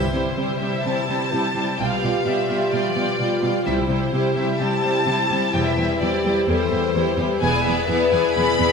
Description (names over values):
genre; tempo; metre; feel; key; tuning
classical; 128 BPM; 4/4; straight; C major; A4 = 444 Hz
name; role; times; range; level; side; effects
rich symphonic violin section; melody; 0.0-8.7 s; C5 to B5; -25 LUFS; left 2 dB; none
warm studio violin section; second line; 0.0-8.7 s; G4 to D5; -27 LUFS; left 1 dB; none
rich symphonic viola section; accompaniment; 0.0-8.7 s; G3 to F4; -25 LUFS; right 3 dB; none
concert harp; arpeggios; 0.0-8.7 s; E2 to B4; -26 LUFS; left 9 dB; none
dark symphonic double bass section; bass; 0.0-7.6 s; E1 to C2; -30 LUFS; right 3 dB; none
rich symphonic cello section; bass; 0.1-8.7 s; E2 to C3; -28 LUFS; right 3 dB; none
dark French horn section; sustained chords; 0.9-8.7 s; E4 to C5; -25 LUFS; left 1 dB; none
room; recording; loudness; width
wet scoring stage reverb, RT60 1.6 s; faint mains hum; -18 LUFS; side -5 dB against mid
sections
0.0-8.7 A section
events
none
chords
0.0 C; 1.8 G7/B; 3.7 C; 5.5 C/E; 7.4 E7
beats
0.37 0.85 1.32 | 1.79 2.27 2.73 3.20 | 3.66 4.13 4.61 5.08 | 5.55 6.02 6.49 6.95 | 7.42 7.89 8.36